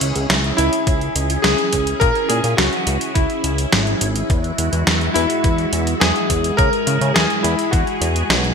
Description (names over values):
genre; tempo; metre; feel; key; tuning
synthwave; 105 BPM; 4/4; straight; C# dorian; A4 = 437 Hz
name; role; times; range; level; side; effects
string machine, full ensemble; sustained chords; 0.0-8.5 s; G#3 to G#4; -23 LUFS; equal; ensemble chorus, sidechain pumping
fat analog bass; bass; 0.0-8.5 s; G#1 to C#3; -21 LUFS; equal; sidechain pumping
detuned 8-bit digital drum machine; drums; 0.0-8.5 s; hi-hat, snare drum; -20 LUFS; right 1 dB; gated reverb
warm electric grand piano; melody; 0.6-8.5 s; E4 to A#4; -20 LUFS; left 2 dB; wide subtle chorus, ping-pong delay
electronic kick drum; drums; 0.9-7.8 s; none; -19 LUFS; equal; none
room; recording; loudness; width
moderate plate reverb, RT60 1.9 s; bright 1980s-style digital production; -15 LUFS; side -6 dB against mid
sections
0.0-8.5 A section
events
none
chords
0.0 C#m; 4.3 Eadd9